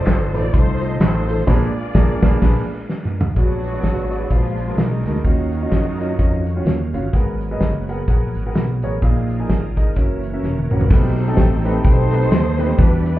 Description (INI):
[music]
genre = uptempo gospel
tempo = 127 BPM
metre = 4/4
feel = swing 59% on 8ths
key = unclear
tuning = A4 = 440 Hz
[part]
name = warm studio string section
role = melody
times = 0.0-6.9, 10.4-13.2 s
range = Gb3 to D5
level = -27 LUFS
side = left 2 dB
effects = none
[part]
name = warm concert grand piano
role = accompaniment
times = 0.0-13.2 s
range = Ab2 to Ab5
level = -24 LUFS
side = equal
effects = none
[part]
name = bright tonewheel organ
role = sustained chords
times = 0.0-13.2 s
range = Eb3 to Bb5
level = -32 LUFS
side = right 3 dB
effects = slow rotary speaker, overdrive, chorus vibrato
[part]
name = modern bright fingered electric bass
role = bass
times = 0.1-13.2 s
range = Fb1 to Gb2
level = -20 LUFS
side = equal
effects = none
[part]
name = natural country drum kit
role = drums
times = 0.1-13.2 s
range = crash cymbal, hi-hat, kick drum, snare drum, toms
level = -17 LUFS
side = equal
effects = none
[part]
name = handclaps and tambourine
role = percussion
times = 0.1-1.4 s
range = none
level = -31 LUFS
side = equal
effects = none
[part]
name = breathy tenor saxophone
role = melody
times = 3.4-6.9 s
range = Eb3 to Gb3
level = -30 LUFS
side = right 3 dB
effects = slapback echo
[sound]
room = little or no reverb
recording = heard muffled through a wall, club reverb, EQ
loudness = -16 LUFS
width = side -15 dB against mid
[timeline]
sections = 0.0-3.4 A section; 3.4-10.9 B section; 10.9-13.2 A section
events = band accent 1.5-3.4; drum fill 2.9-3.4, 10.4-10.9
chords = 0.0 F7; 1.5 Bb7b9; 3.4 Bb7b9b13; 5.2 Ebm9; 7.1 Abm9; 9.0 Bb7sus4; 10.0 Gb7; 10.9 B7b9b13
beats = 0.07 0.54 1.01 | 1.48 1.95 2.42 2.89 | 3.36 3.83 4.30 4.78 | 5.25 5.72 6.19 6.66 | 7.14 7.61 8.08 8.55 | 9.02 9.49 9.97 10.44 | 10.91 11.38 11.85 12.32 | 12.79